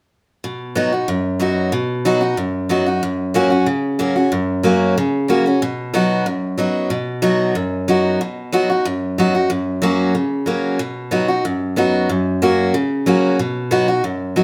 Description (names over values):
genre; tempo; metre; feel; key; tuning
bluegrass; 185 BPM; 4/4; straight; B major; A4 = 440 Hz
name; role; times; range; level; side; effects
picked steel-string acoustic guitar; solo; 0.4-14.4 s; F#2 to F#4; -18 LUFS; equal; none
room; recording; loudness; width
moderate studio reverb, RT60 0.8 s; none; -18 LUFS; mono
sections
0.4-14.4 A section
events
none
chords
0.4 B; 3.0 F#; 5.6 B; 9.5 F#; 10.8 B; 12.1 F#; 13.4 B